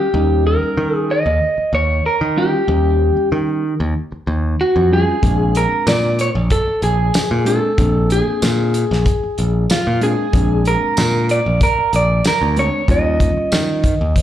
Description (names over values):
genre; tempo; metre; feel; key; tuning
straight-eighth soul blues; 94 BPM; 4/4; straight; unclear; A4 = 439 Hz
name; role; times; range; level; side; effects
electric guitar through a small old amp; melody; 0.0-14.2 s; F4 to Eb5; -18 LUFS; equal; slapback echo
mellow reed electric piano; accompaniment; 0.0-13.8 s; G3 to G4; -22 LUFS; equal; slapback echo
modern bright picked electric bass; bass; 0.1-14.1 s; Bb1 to Eb3; -17 LUFS; equal; none
warm soul drum kit; drums; 5.2-14.2 s; hi-hat, kick drum, snare drum, tambourine; -19 LUFS; equal; none
room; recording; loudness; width
light reverb, small room reverb; live gig heard through the venue's PA, club reverb; -14 LUFS; side -11 dB against mid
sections
0.0-14.2 A section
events
none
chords
0.0 Eb9; 5.2 Bb9; 12.9 Eb9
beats
| 0.13 0.77 1.41 2.04 | 2.68 3.32 3.96 4.59 | 5.23 5.87 6.51 7.14 | 7.78 8.42 9.05 9.69 | 10.33 10.97 11.61 12.24 | 12.88 13.52 14.16